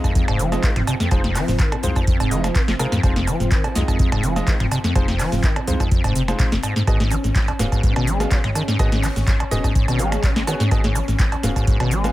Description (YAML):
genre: acid house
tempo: 125 BPM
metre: 4/4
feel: swing 53% on 16ths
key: F phrygian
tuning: A4 = 440 Hz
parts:
  - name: warm analog pad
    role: sustained chords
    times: 0.0-12.1 s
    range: C4 to Db4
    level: -30 LUFS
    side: equal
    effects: chorus, sidechain pumping
  - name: acid bass, saw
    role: riff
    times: 0.0-12.1 s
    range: Ab1 to Ab3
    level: -23 LUFS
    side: equal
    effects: overdrive, ensemble chorus, sidechain pumping, digital delay
  - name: warm concert grand piano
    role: stabs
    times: 0.0-12.1 s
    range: Ab3 to F5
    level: -30 LUFS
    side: equal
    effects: digital delay
  - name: booming analog drum machine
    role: drums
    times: 0.0-12.1 s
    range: cowbell, finger snaps, handclaps, hi-hat, shaker, snare drum, toms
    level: -24 LUFS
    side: right 1 dB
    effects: overdrive
  - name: electronic kick drum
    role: drums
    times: 0.0-11.8 s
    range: none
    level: -20 LUFS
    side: equal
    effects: overdrive
  - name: tight funk drum kit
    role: drums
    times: 0.2-12.1 s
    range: hi-hat, snare drum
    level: -41 LUFS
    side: left 4 dB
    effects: none
  - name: saturated sub bass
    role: bass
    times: 0.3-12.1 s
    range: Eb1 to C2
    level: -25 LUFS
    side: equal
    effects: sidechain pumping
room: little or no reverb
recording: none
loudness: -17 LUFS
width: side -16 dB against mid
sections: 0.0-12.1 A section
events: none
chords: 0.0 Fm7; 6.9 Abm7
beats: 0.15 0.63 | 1.11 1.59 2.07 2.55 | 3.03 3.51 3.99 4.47 | 4.95 5.43 5.91 6.39 | 6.87 7.35 7.83 8.31 | 8.79 9.27 9.75 10.23 | 10.71 11.19 11.67